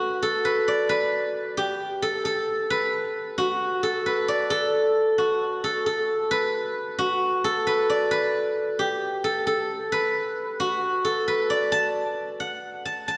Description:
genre	hip hop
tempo	133 BPM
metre	4/4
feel	half-time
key	B minor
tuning	A4 = 438 Hz
part	steel-string zither	solo	0.0-13.2 s	F#4 to A5	-25 LUFS	equal	low-pass filter
room	wet lush hall reverb, RT60 2.5 s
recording	dreamy mix soaked in reverb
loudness	-25 LUFS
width	mono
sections	0.0-11.7 A section; 11.7-13.2 B section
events	none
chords	none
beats	0.00 0.45 | 0.90 1.35 1.80 2.25 | 2.70 3.15 3.60 4.05 | 4.51 4.96 5.41 5.86 | 6.31 6.76 7.21 7.66 | 8.12 8.57 9.02 9.47 | 9.92 10.37 10.82 11.27 | 11.72 12.18 12.63 13.08

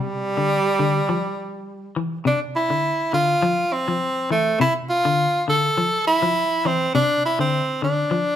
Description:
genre	afrobeat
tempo	102 BPM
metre	4/4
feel	swing 54% on 16ths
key	D minor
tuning	A4 = 440 Hz
part	edgy tenor saxophone	melody	0.0-8.4 s	G3 to A4	-20 LUFS	right 1 dB	none
part	clean electric guitar	arpeggios	0.0-8.3 s	C3 to F3	-24 LUFS	left 4 dB	none
room	moderate large studio reverb, RT60 1.2 s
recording	band playing live in one room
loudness	-18 LUFS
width	side -10 dB against mid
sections	0.0-8.4 A section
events	none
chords	0.0 Dm9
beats	0.50 1.09 1.67 | 2.26 2.84 3.43 4.01 | 4.60 5.19 5.77 6.36 | 6.95 7.53 8.12

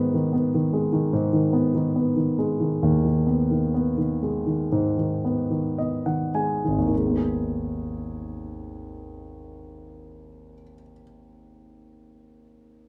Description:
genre	folk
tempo	50-76 BPM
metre	4/4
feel	straight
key	G# minor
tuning	A4 = 440 Hz
part	warm concert grand piano	accompaniment	0.0-12.9 s	G#1 to G#5	-25 LUFS	equal	none
room	moderate studio reverb, RT60 0.8 s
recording	none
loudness	-24 LUFS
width	mono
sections	0.0-6.9 A section; 6.9-11.7 B section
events	slowing down 0.0-6.9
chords	0.0 G#m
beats	0.33 1.13 1.96 | 2.82 3.74 4.72 5.78 | 6.92 8.11 9.28 10.47

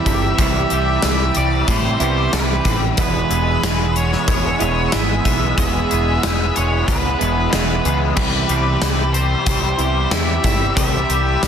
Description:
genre	rock, shoegaze and dream pop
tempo	92 BPM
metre	4/4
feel	straight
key	unclear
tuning	A4 = 440 Hz
part	octave-fuzz lead guitar	melody	0.0-11.5 s	B4 to E5	-24 LUFS	right 2 dB	distortion, slapback echo
part	analog string pad	sustained chords	0.0-11.5 s	G4 to F#6	-29 LUFS	right 1 dB	ensemble chorus
part	twangy electric guitar	arpeggios	0.0-11.5 s	G3 to G#4	-29 LUFS	right 1 dB	wide subtle chorus, slapback echo
part	biting overdriven guitar	riff	0.0-11.5 s	E2 to G#4	-24 LUFS	left 11 dB	analog chorus
part	direct-recorded clean electric guitar	riff	0.0-11.5 s	E2 to E4	-24 LUFS	right 11 dB	reverse reverb
part	growling picked electric bass	bass	0.1-11.5 s	E1 to A2	-21 LUFS	equal	overdrive
part	gated 80s drum kit	drums	0.1-11.5 s	crash cymbal, hi-hat, kick drum, snare drum	-20 LUFS	left 1 dB	none
room	studio ambience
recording	dense, heavily limited modern master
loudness	-15 LUFS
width	side -8 dB against mid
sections	0.0-11.5 A section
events	none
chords	0.0 Cmaj7; 3.0 E; 8.2 Cmaj7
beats	| 0.39 1.03 1.68 2.33 | 2.98 3.63 4.28 4.92 | 5.57 6.22 6.87 7.52 | 8.17 8.82 9.47 10.12 | 10.77 11.42

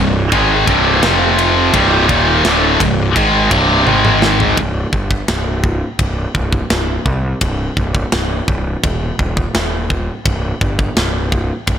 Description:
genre	heavy metal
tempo	84 BPM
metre	4/4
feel	straight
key	C minor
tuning	A4 = 440 Hz
part	heavy high-gain guitar	riff	0.0-4.6 s	C2 to Ab3	-12 LUFS	equal	distortion
part	fuzz picked electric bass	bass	0.0-11.8 s	C1 to C2	-18 LUFS	equal	overdrive
part	tight metal drum kit	drums	0.3-11.8 s	kick drum, ride cymbal, snare drum, toms	-18 LUFS	equal	none
room	studio reverb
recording	none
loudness	-12 LUFS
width	side -9 dB against mid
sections	0.0-4.6 A section; 4.6-11.8 B section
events	drum fill 3.9-4.6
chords	0.0 Cm; 1.0 F5; 1.7 Cm; 3.9 Ab5; 4.6 C5; 8.8 N.C.; 10.3 C5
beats	0.33 1.03 | 1.74 2.45 3.16 3.87 | 4.58 5.29 6.00 6.71 | 7.42 8.13 8.84 9.55 | 10.26 10.97 11.69

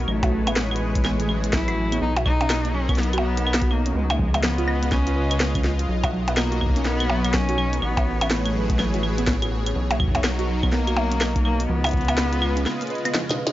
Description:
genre	IDM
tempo	124 BPM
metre	4/4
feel	swing 62% on 16ths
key	B lydian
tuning	A4 = 440 Hz
part	warm cello	melody	0.0-13.1 s	F#3 to E4	-28 LUFS	left 1 dB	tape echo
part	warm analog pad	sustained chords	0.0-13.5 s	A2 to D#5	-29 LUFS	equal	chorus
part	warbly dusty pluck	arpeggios	0.0-13.5 s	B2 to B4	-29 LUFS	right 2 dB	chorus, analog delay
part	rubbery square bass	bass	0.0-12.7 s	A1 to C#2	-25 LUFS	equal	none
part	glitchy drum kit	drums	0.1-13.5 s	claves, hi-hat, percussion blips, snare drum	-25 LUFS	equal	studio reverb
part	electronic kick drum	drums	0.2-12.1 s	none	-24 LUFS	equal	studio reverb
room	little or no reverb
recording	dry, gritty hardware recording, cassette tape, nothing above 7.6 kHz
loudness	-20 LUFS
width	side -15 dB against mid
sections	0.0-13.5 A section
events	break 12.7-13.5; drum fill 13.1-13.5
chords	0.1 Amaj7; 2.0 Bmaj7; 4.0 C#7; 5.9 Bmaj7; 7.8 Amaj7; 9.8 Bmaj7; 11.7 C#7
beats	| 0.08 0.56 1.05 1.53 | 2.02 2.50 2.98 3.47 | 3.95 4.43 4.92 5.40 | 5.89 6.37 6.85 7.34 | 7.82 8.30 8.79 9.27 | 9.76 10.24 10.72 11.21 | 11.69 12.18 12.66 13.14

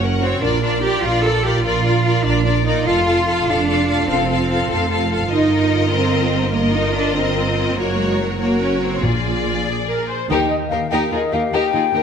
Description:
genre	cinematic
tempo	98 BPM (dotted quarters)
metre	12/8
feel	straight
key	Bb major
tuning	A4 = 440 Hz
part	rich symphonic violin section	melody	0.0-12.0 s	Ab4 to Gb5	-24 LUFS	left 5 dB	none
part	rich symphonic violin section	second line	0.0-12.0 s	F4 to Db5	-24 LUFS	left 3 dB	none
part	rich symphonic viola section	accompaniment	0.0-12.0 s	Db4 to C5	-25 LUFS	right 1 dB	none
part	clear symphonic double bass section	bass	0.0-10.5 s	F1 to Eb2	-22 LUFS	right 3 dB	none
part	rich symphonic cello section	bass	0.2-12.0 s	Eb2 to A4	-20 LUFS	right 2 dB	none
part	timpani	percussion	9.0-9.6 s	Bb2	-25 LUFS	left 3 dB	none
part	mellow concert flute	second line	10.3-12.0 s	Eb5 to G5	-21 LUFS	left 5 dB	none
part	concert harp	arpeggios	10.3-12.0 s	Eb3 to Eb5	-25 LUFS	left 6 dB	none
room	moderate scoring stage reverb, RT60 1.8 s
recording	none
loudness	-16 LUFS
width	side -7 dB against mid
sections	0.0-10.3 A section; 10.3-12.0 B section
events	none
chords	0.4 Bb; 2.9 F; 5.3 Ebadd9/G; 7.8 Gb; 9.0 Bb7; 10.3 Eb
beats	| 0.42 1.04 1.65 2.26 | 2.87 3.48 4.09 4.70 | 5.32 5.93 6.55 7.16 | 7.78 8.40 9.04 9.67 | 10.30 10.92 11.54

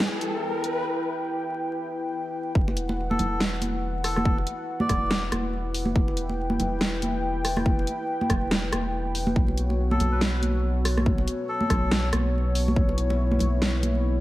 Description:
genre	deep dubstep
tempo	141 BPM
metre	4/4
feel	swing 58% on 16ths, half-time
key	E dorian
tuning	A4 = 440 Hz
part	dark analog pad	sustained chords	0.0-14.2 s	B3 to G5	-30 LUFS	left 1 dB	chorus
part	soft dub sub bass	bass	0.0-14.2 s	E1 to E2	-27 LUFS	equal	high-pass filter
part	dubstep drum kit	drums	0.0-13.9 s	hi-hat, rim click, snare drum	-29 LUFS	right 1 dB	none
part	riser	sound effects	0.0-0.9 s	none	-31 LUFS	left 1 dB	none
part	electronic kick drum	drums	2.6-12.9 s	none	-24 LUFS	equal	none
part	congas	percussion	2.7-13.9 s	none	-30 LUFS	right 1 dB	dub echo
part	melodica	melody	3.1-5.2, 9.9-12.1 s	A4 to D5	-32 LUFS	left 1 dB	dub echo
room	light reverb, digital ambience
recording	vinyl crackle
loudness	-23 LUFS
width	side -16 dB against mid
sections	0.0-2.6 A section; 2.6-14.2 B section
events	build-up 0.0-2.6; riser 0.0-0.9; break 0.9-2.6; drop 2.6-14.2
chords	0.0 Em; 9.4 B5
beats	0.00 0.42 | 0.85 1.28 1.70 2.13 | 2.55 2.98 3.40 3.83 | 4.25 4.68 5.11 5.53 | 5.96 6.38 6.81 7.23 | 7.66 8.09 8.51 8.94 | 9.36 9.79 10.21 10.64 | 11.06 11.49 11.91 12.34 | 12.77 13.19 13.62 14.04

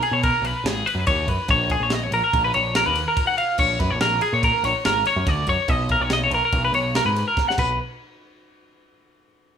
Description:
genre	math rock and midwest emo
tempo	143 BPM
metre	5/4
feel	straight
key	B lydian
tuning	A4 = 440 Hz
part	twelve-string electric guitar	arpeggios	0.0-7.8 s	G#4 to F#5	-20 LUFS	left 1 dB	slapback echo
part	crisp fusion drum kit	drums	0.0-7.7 s	crash cymbal, kick drum, ride cymbal, snare drum	-26 LUFS	right 1 dB	none
part	growling picked electric bass	bass	0.1-7.8 s	G#1 to B2	-25 LUFS	right 1 dB	overdrive
room	light reverb, small room ambience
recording	rough home demo mix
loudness	-18 LUFS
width	side -8 dB against mid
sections	0.0-7.8 A section; 7.8-9.6 B section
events	drum fill 7.4-7.8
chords	0.0 Bsus2; 1.5 F#/A# (rootless); 3.6 A#7alt; 5.7 Bmaj9; 7.6 N.C.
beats	0.24 0.66 1.08 | 1.50 1.92 2.34 2.76 3.18 | 3.60 4.02 4.44 4.86 5.28 | 5.70 6.12 6.54 6.96 7.38

